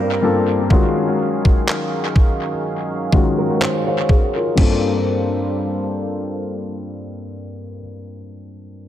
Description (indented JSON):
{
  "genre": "contemporary R&B",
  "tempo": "62 BPM",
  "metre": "4/4",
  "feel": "swing 54% on 16ths",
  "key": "unclear",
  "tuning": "A4 = 441 Hz",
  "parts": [
    { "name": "felt-muted upright piano", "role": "accompaniment", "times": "0.0-8.9 s", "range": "G2 to F5", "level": "-20 LUFS", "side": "left 3 dB", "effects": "low-pass filter, analog delay" },
    { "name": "warm analog pad", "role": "sustained chords", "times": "0.0-7.8 s", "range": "Eb3 to F5", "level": "-26 LUFS", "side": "right 2 dB", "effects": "chorus, low-pass filter" },
    { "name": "fingerpicked steel-string acoustic guitar", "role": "arpeggios", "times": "0.0-4.5 s", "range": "Bb4 to Db5", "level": "-25 LUFS", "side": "right 6 dB", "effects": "low-pass filter, analog delay" },
    { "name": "detuned 8-bit digital drum machine", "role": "drums", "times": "0.7-4.8 s", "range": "crash cymbal, handclaps, kick drum", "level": "-17 LUFS", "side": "equal", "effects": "analog delay" }
  ],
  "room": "light reverb",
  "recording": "echo-heavy mix",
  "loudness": "-16 LUFS",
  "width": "side -11 dB against mid",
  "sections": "0.0-4.6 A section; 4.6-8.4 B section",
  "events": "filter sweep 0.0-4.6",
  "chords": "0.0 Gm11; 0.7 Ebm11; 4.6 Gm11"
}